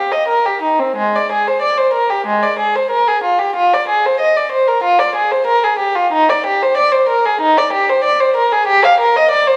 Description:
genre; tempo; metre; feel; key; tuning
classical, baroque-style suite movement for unaccompanied violin; 94 BPM; 4/4; rubato; C minor; A4 = 443 Hz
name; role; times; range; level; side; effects
dark violin; solo; 0.0-9.6 s; Ab3 to F5; -14 LUFS; equal; none
room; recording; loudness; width
wet recital hall reverb, RT60 1.4 s; none; -14 LUFS; mono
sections
0.0-9.6 A section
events
none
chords
none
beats
0.28 | 0.96 1.62 2.25 2.90 | 3.54 4.18 4.81 5.45 | 6.11 6.77 7.41 8.03 | 8.66 9.30

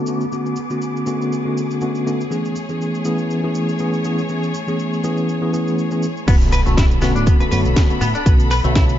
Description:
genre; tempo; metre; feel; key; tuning
nu-disco, nu disco; 121 BPM; 4/4; swing 55% on 16ths; B dorian; A4 = 438 Hz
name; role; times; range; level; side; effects
mellow tine electric piano; accompaniment; 0.0-9.0 s; D3 to C#5; -20 LUFS; left 1 dB; medium tremolo, low-pass filter, tape echo
clear studio string section; sustained chords; 0.0-9.0 s; A3 to D6; -28 LUFS; left 1 dB; sidechain pumping, low-pass filter
cabasa; percussion; 0.1-9.0 s; none; -41 LUFS; right 3 dB; none
direct-recorded clean electric guitar; riff; 6.3-8.8 s; A3 to B4; -24 LUFS; left 2 dB; lush chorus, vintage 12-bit sampler grit, tape echo
fingered electric bass with an envelope filter; bass; 6.3-9.0 s; B1 to A2; -18 LUFS; equal; none
electronic kick drum; drums; 6.3-8.9 s; none; -14 LUFS; equal; none
house drum kit; drums; 6.3-9.0 s; crash cymbal, hi-hat, shaker, snare drum; -26 LUFS; equal; none
impact; sound effects; 6.3-8.3 s; none; -24 LUFS; equal; none
room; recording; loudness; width
light reverb; dark, warm production, nothing above 7.5 kHz; -16 LUFS; side -11 dB against mid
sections
0.0-6.3 A section; 6.3-9.0 B section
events
filter sweep on string section 0.0-6.3; drop 6.3-9.0; impact 6.3-8.3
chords
0.0 Bm7; 2.3 Amaj7; 6.3 Bm7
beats
| 0.33 0.82 1.32 1.82 | 2.31 2.81 3.30 3.80 | 4.29 4.79 5.29 5.78 | 6.28 6.77 7.27 7.77 | 8.26 8.76

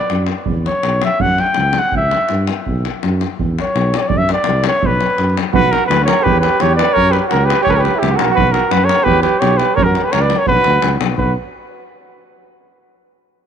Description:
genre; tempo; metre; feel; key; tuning
balkan folk, Balkan brass band; 169 BPM; 2/4; straight; B harmonic minor; A4 = 441 Hz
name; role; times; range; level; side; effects
mellow trumpet; melody; 0.0-11.3 s; G4 to G5; -16 LUFS; left 1 dB; none
davul; percussion; 0.0-11.3 s; none; -20 LUFS; left 2 dB; none
dark tuba; bass; 0.1-11.3 s; B1 to G2; -18 LUFS; equal; none
mellow flugelhorn; second line; 5.5-11.3 s; E4 to B4; -18 LUFS; right 11 dB; none
room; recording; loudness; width
moderate plate reverb, RT60 3.6 s; 1960s-style stereo; -12 LUFS; side -8 dB against mid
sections
0.0-5.5 A section; 5.5-11.2 B section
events
speeding up 0.0-11.9; trumpet solo 0.0-5.5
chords
0.5 E5; 1.2 F#5; 1.9 C#dim; 2.7 B5; 3.4 E5; 4.1 Cadd9; 4.8 B5; 5.5 Bm; 6.3 Em7; 7.0 F#5; 7.7 Em69; 8.4 B5; 9.1 E5; 9.8 F#5; 10.5 Bm; 11.2 B5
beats
0.11 | 0.47 0.84 | 1.21 1.57 | 1.94 2.30 | 2.66 3.02 | 3.39 3.75 | 4.11 4.47 | 4.83 5.18 | 5.54 5.90 | 6.25 6.61 | 6.96 7.31 | 7.67 8.02 | 8.37 8.72 | 9.07 9.42 | 9.77 10.12 | 10.47 10.82 | 11.16

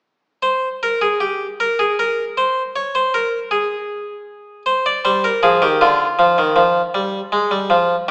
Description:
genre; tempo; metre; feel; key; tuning
classical, baroque-style two-part invention for harpsichord; 52 BPM (dotted quarters); 6/8; straight; F minor; A4 = 439 Hz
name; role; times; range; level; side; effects
harpsichord; solo; 0.4-8.1 s; D3 to D5; -18 LUFS; equal; none
room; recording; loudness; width
wet recital hall reverb, RT60 1.6 s; recorded in a church or concert hall, small speaker sound; -18 LUFS; mono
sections
0.0-8.1 A section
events
none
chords
0.0 N.C.; 4.7 Cm; 5.8 Dm; 6.9 Fmadd9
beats
| 0.04 1.21 | 2.37 3.52 | 4.66 5.80 | 6.95 8.09

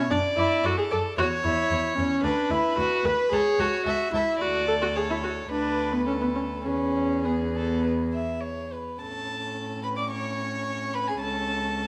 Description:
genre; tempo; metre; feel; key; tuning
quick classical-period movement for string quartet; 100-113 BPM; 4/4; rubato; A major; A4 = 438 Hz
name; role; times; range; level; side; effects
dark violin; melody; 0.0-11.9 s; G#4 to D6; -36 LUFS; equal; none
rich violin; second line; 0.0-11.9 s; G#4 to E5; -32 LUFS; equal; none
warm viola; accompaniment; 0.0-11.9 s; B3 to B4; -29 LUFS; equal; none
warm cello; bass; 0.0-11.9 s; C#2 to A2; -35 LUFS; equal; none
room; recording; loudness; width
moderate recital hall reverb, RT60 1.8 s; none; -26 LUFS; mono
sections
0.0-9.0 A section; 9.0-11.9 B section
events
none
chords
0.1 D/F#; 1.2 C#m/E; 2.2 Bm/D; 3.3 A/C#; 4.4 D5; 5.5 Bm/D; 6.7 E; 9.0 A; 11.2 A/C#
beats
| 0.10 0.65 1.18 1.71 | 2.25 2.79 3.33 3.87 | 4.41 4.97 5.52 6.07 | 6.65 7.25 7.85 8.43 | 9.01 9.56 10.12 10.67 | 11.21 11.75

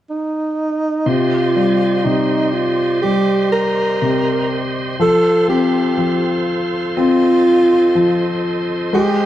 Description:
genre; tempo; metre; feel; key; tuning
pop ballad; 61 BPM; 4/4; straight; unclear; A4 = 439 Hz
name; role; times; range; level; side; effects
breathy alto saxophone; melody; 0.1-9.3 s; Eb4 to Bb4; -16 LUFS; right 1 dB; none
warm concert grand piano; accompaniment; 1.1-9.3 s; C3 to C4; -17 LUFS; left 2 dB; none
bright tonewheel organ; sustained chords; 1.1-9.3 s; Ab3 to C6; -24 LUFS; right 2 dB; fast rotary speaker
room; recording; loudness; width
moderate large studio reverb, RT60 1.0 s; band playing live in one room; -14 LUFS; side -12 dB against mid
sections
0.0-1.1 A section; 1.1-9.3 B section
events
none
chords
0.0 N.C.; 1.1 Cm; 5.0 F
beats
0.09 | 1.07 2.05 3.04 4.02 | 5.00 5.99 6.97 7.96 | 8.94

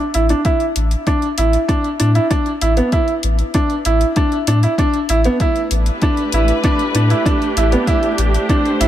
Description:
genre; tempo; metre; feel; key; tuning
piano and strings electronica; 97 BPM; 4/4; straight; A minor; A4 = 440 Hz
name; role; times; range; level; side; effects
clear upright piano; riff; 0.1-8.9 s; B3 to E4; -17 LUFS; right 1 dB; low-pass filter, ping-pong delay
warm sub bass; bass; 0.1-8.9 s; A1 to A2; -15 LUFS; left 1 dB; sidechain pumping
electronic hi-hat; drums; 0.1-8.9 s; none; -26 LUFS; left 4 dB; none
electronic kick drum; drums; 0.5-8.6 s; none; -18 LUFS; left 1 dB; none
muted studio string section; sustained chords; 5.4-8.9 s; A3 to C5; -21 LUFS; equal; none
room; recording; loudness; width
light reverb; none; -14 LUFS; side -12 dB against mid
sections
0.0-8.9 A section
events
none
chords
0.5 Asus4; 5.4 Asus2; 7.9 D5/A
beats
| 0.46 1.07 1.69 2.31 | 2.93 3.55 4.17 4.79 | 5.40 6.02 6.64 7.26 | 7.88 8.50

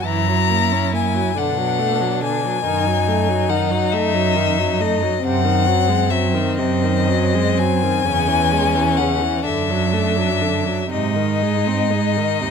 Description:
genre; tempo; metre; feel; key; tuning
classical, slow romantic movement for string quartet; 39-47 BPM (dotted quarters); 6/8; rubato; unclear; A4 = 438 Hz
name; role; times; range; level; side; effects
clear violin; melody; 0.0-12.5 s; D#5 to A#5; -21 LUFS; left 12 dB; none
rich violin; second line; 0.0-12.5 s; B#3 to E4; -23 LUFS; left 5 dB; none
rich viola; accompaniment; 0.0-12.5 s; B#2 to C#4; -24 LUFS; right 4 dB; none
rich cello; bass; 0.1-12.5 s; D#2 to B2; -21 LUFS; right 5 dB; none
room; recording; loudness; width
light reverb; close, detailed microphones; -16 LUFS; side -6 dB against mid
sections
0.0-12.5 A section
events
none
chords
0.1 F#7; 1.4 Bm7; 2.7 D#dim/F#; 5.2 G#7/F#; 8.1 C#m/E; 9.5 D/F#; 10.9 G#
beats
| 0.07 1.38 | 2.67 3.94 | 5.24 6.59 | 8.06 9.46 | 10.93 12.43

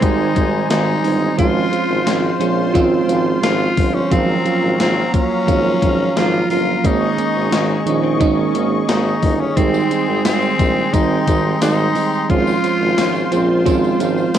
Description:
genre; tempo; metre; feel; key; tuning
1980s-style pop; 88 BPM; 4/4; straight; Ab major; A4 = 440 Hz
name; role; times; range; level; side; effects
raspy tenor saxophone; melody; 0.0-14.4 s; C4 to F4; -20 LUFS; left 3 dB; cassette tape, analog delay
FM electric piano with soft pad layer; accompaniment; 0.0-14.4 s; Eb3 to F4; -18 LUFS; right 6 dB; chorus, cassette tape
brassy analog pad; sustained chords; 0.0-14.4 s; Gb3 to Db6; -24 LUFS; left 2 dB; chorus, cassette tape
clear tuba; bass; 0.0-14.4 s; G1 to Bb1; -21 LUFS; left 2 dB; none
gated 80s digital drum machine; drums; 0.0-14.4 s; hi-hat, kick drum, snare drum, tambourine; -20 LUFS; left 2 dB; gated reverb, gated reverb snare, overdrive
direct-recorded clean electric guitar; second line; 2.1-3.2, 7.5-8.7, 13.0-14.1 s; Ab3 to Db4; -29 LUFS; left 10 dB; wide subtle chorus, cassette tape, analog delay
tambourine; percussion; 9.7-14.4 s; none; -38 LUFS; right 9 dB; none
room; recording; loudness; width
moderate studio reverb, RT60 0.5 s; home recording on cassette; -14 LUFS; side -10 dB against mid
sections
0.0-14.4 A section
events
none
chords
0.0 Abmaj7; 1.4 Dbmaj7/Ab; 4.1 Gbmaj7/Ab; 6.8 Eb7sus4/Ab; 9.6 Abmaj7; 12.3 Dbmaj7/Ab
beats
0.02 0.70 | 1.39 2.07 2.75 3.43 | 4.12 4.80 5.48 6.16 | 6.84 7.52 8.21 8.89 | 9.57 10.25 10.93 11.62 | 12.30 12.98 13.66 14.34

